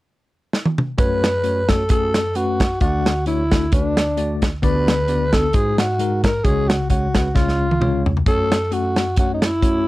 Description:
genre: uptempo gospel.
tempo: 132 BPM.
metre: 4/4.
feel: swing 55% on 8ths.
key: F# minor.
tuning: A4 = 440 Hz.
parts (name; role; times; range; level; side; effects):
modern studio drum kit; drums; 0.5-9.7 s; hi-hat, kick drum, snare drum, toms; -19 LUFS; equal; none.
growling tenor saxophone; melody; 1.0-9.9 s; D4 to B4; -21 LUFS; equal; none.
bell-like tine electric piano; accompaniment; 1.0-9.9 s; C#2 to D5; -21 LUFS; left 1 dB; medium stereo tremolo.
room: little or no reverb.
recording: dry, close 1970s-style studio recording.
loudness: -16 LUFS.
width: side -18 dB against mid.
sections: 1.0-8.3 A section; 8.3-9.9 B section.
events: drum fill 0.5-1.0, 7.4-8.3.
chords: 0.0 N.C.; 1.0 F#m; 2.8 D; 4.6 Bm/D; 5.5 G#7; 6.4 C#sus4; 7.4 C#; 8.3 F#m.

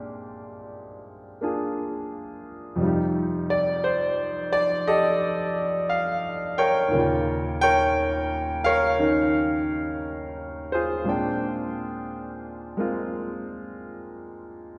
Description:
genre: solo jazz.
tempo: 58 BPM.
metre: 4/4.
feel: swing 67% on 8ths.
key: unclear.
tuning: A4 = 438 Hz.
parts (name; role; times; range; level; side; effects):
clear concert grand piano; solo; 0.0-14.8 s; Eb2 to G5; -26 LUFS; equal; none.
room: wet scoring stage reverb, RT60 2.2 s.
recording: recorded in a church or concert hall.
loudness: -25 LUFS.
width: mono.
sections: 0.0-14.8 A section.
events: none.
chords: 0.0 Bb13; 2.8 F9; 6.9 Eb9; 11.1 Bb13.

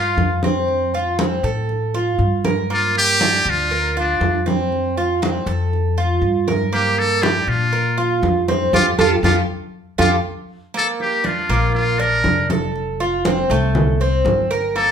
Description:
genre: latin, Cuban son and guajira.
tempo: 119 BPM.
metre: 4/4.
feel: straight.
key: unclear.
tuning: A4 = 441 Hz.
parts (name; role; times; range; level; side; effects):
trumpet with metal mute; melody; 0.0-14.9 s; D4 to Bb4; -18 LUFS; equal; none.
Cuban tres; arpeggios; 0.0-14.9 s; A3 to Bb4; -20 LUFS; right 2 dB; none.
upright bass; bass; 0.0-14.9 s; F1 to Bb2; -22 LUFS; left 2 dB; none.
congas; percussion; 0.2-14.9 s; none; -24 LUFS; right 1 dB; none.
room: moderate large studio reverb, RT60 0.8 s.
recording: band playing live in one room.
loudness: -16 LUFS.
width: side -7 dB against mid.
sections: 0.0-10.7 A section; 10.7-14.9 B section.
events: band accent 8.7-10.7.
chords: 0.0 G7(no3); 0.7 Fadd9; 2.7 Gm7; 4.7 Fadd9; 6.7 Gm7; 8.7 Fadd9; 10.7 Fadd11; 12.8 Fadd9.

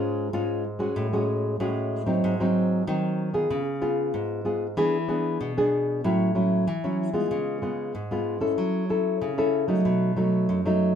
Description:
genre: samba.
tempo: 94 BPM.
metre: 4/4.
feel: straight.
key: A major from 6.0 s.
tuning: A4 = 441 Hz.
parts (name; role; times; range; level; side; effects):
nylon-string guitar; solo; 0.0-11.0 s; F#2 to A4; -23 LUFS; equal; none.
room: wet studio ambience, RT60 0.5 s.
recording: band playing live in one room.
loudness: -23 LUFS.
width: side -8 dB against mid.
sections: 0.0-6.0 A section; 6.0-11.0 B section.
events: none.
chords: 0.0 C#/G#; 1.0 F#madd9/A; 2.2 G#7; 3.5 C#7; 4.8 E7; 6.0 A6; 7.3 C#7; 8.6 F#m7; 9.9 B7.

